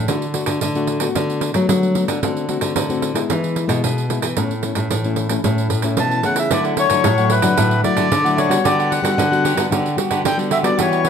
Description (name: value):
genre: samba and choro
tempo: 112 BPM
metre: 4/4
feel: straight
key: D major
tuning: A4 = 442 Hz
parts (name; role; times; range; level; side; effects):
- nylon-string guitar; accompaniment; 0.0-11.1 s; A2 to F#4; -22 LUFS; left 4 dB; none
- nylon-string guitar; bass; 0.0-11.1 s; A2 to F#3; -21 LUFS; equal; none
- pandeiro; percussion; 0.1-11.1 s; none; -23 LUFS; right 6 dB; none
- accordion; melody; 6.0-11.1 s; B4 to A5; -18 LUFS; left 3 dB; none
- cavaquinho; accompaniment; 6.5-11.1 s; E4 to F#5; -24 LUFS; right 3 dB; none
room: moderate studio reverb, RT60 0.8 s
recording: none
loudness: -16 LUFS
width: side -7 dB against mid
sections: 0.0-6.5 A section; 6.5-11.1 B section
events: none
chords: 0.1 D; 1.2 Bm7/D; 2.2 D7; 3.3 E; 4.4 A; 6.5 Dadd9; 8.6 Gmaj7/D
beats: | 0.08 0.62 1.15 1.69 | 2.22 2.76 3.30 3.83 | 4.37 4.90 5.44 5.97 | 6.51 7.04 7.58 8.11 | 8.65 9.18 9.72 10.25 | 10.78